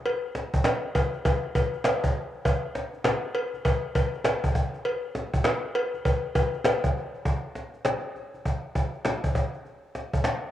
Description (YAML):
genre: R&B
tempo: 100 BPM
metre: 4/4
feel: swing 62% on 16ths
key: none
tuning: none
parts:
  - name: cajon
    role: drums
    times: 0.1-10.4 s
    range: none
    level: -26 LUFS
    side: equal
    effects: cassette tape
  - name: cowbell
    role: percussion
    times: 0.1-6.8 s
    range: none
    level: -29 LUFS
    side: left 1 dB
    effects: none
room: wet spring reverb, RT60 2.5 s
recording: home recording on cassette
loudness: -25 LUFS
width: side -12 dB against mid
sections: 0.0-7.3 A section; 7.3-10.5 B section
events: none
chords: none